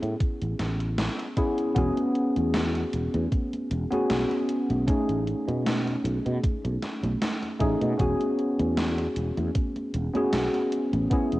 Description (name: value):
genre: vaporwave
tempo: 77 BPM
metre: 4/4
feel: swing 54% on 16ths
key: E major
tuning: A4 = 441 Hz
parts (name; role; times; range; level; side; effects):
- tine electric piano; accompaniment; 0.0-11.4 s; A3 to G#4; -27 LUFS; equal; analog chorus, cassette tape, tape echo
- sustaining fretless electric bass; bass; 0.0-11.4 s; E1 to B2; -28 LUFS; equal; lush chorus
- gated 80s digital drum machine; drums; 0.0-11.4 s; congas, hi-hat, snare drum; -32 LUFS; right 1 dB; gated reverb, gated reverb snare, cassette tape
- electronic kick drum; drums; 0.2-11.3 s; none; -26 LUFS; equal; cassette tape
room: light reverb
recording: home recording on cassette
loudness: -24 LUFS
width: side -17 dB against mid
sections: 0.0-11.4 A section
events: none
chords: 0.0 Amaj9; 1.8 E69; 4.9 B13; 8.0 E69